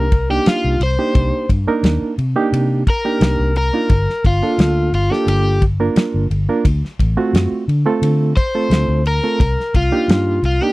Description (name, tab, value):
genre	straight-eighth soul blues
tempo	87 BPM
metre	4/4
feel	straight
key	unclear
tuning	A4 = 439 Hz
part	overdriven semi-hollow guitar	melody	0.0-10.7 s	F4 to C5	-19 LUFS	left 1 dB	none
part	reed electric piano	accompaniment	0.0-10.7 s	A3 to Bb4	-19 LUFS	right 3 dB	fast tremolo
part	vintage muted fingered electric bass	bass	0.0-10.6 s	G1 to D3	-18 LUFS	left 1 dB	none
part	warm soul drum kit	drums	0.1-10.6 s	kick drum, ride cymbal, snare drum	-15 LUFS	equal	none
room	little or no reverb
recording	dry, close 1970s-style studio recording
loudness	-14 LUFS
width	side -20 dB against mid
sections	0.0-10.7 A section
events	overdriven electric guitar solo 0.0-10.7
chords	0.0 Cm7; 3.9 Gm7; 6.6 D7#9; 9.4 Cm7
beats	0.46 | 1.15 1.83 2.52 3.21 | 3.90 4.58 5.27 5.96 | 6.65 7.33 8.02 8.71 | 9.40 10.09